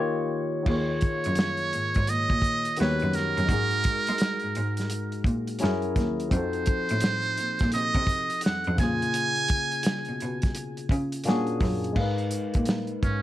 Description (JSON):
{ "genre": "R&B, neo-soul", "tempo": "85 BPM", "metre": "4/4", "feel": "swing 63% on 16ths", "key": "unclear", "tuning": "A4 = 440 Hz", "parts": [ { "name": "barky tine electric piano", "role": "accompaniment", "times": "0.0-13.2 s", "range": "A#2 to E#5", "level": "-30 LUFS", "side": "left 3 dB", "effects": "overdrive, lush chorus, plate reverb" }, { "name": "trumpet with metal mute", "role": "melody", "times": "0.7-13.2 s", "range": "C#4 to G#5", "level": "-28 LUFS", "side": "right 3 dB", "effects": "none" }, { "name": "bright cello", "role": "bass", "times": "0.7-13.2 s", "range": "D#2 to G#3", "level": "-30 LUFS", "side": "equal", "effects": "none" }, { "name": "warm soul drum kit", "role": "drums", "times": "0.7-13.2 s", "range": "crash cymbal, hi-hat, kick drum, snare drum", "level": "-27 LUFS", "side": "equal", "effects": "none" } ], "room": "light reverb", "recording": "none", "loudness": "-24 LUFS", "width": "side -14 dB against mid", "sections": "0.7-12.0 A section; 12.0-13.2 B section", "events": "break 0.0-0.7; muted trumpet solo 12.0-13.2", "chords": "0.0 D#7; 0.7 D#7sus4; 2.8 D#7alt; 3.5 G#sus2; 5.6 F#9; 6.3 F7b9; 8.8 A#m7; 11.3 A#7alt; 12.0 G#m69" }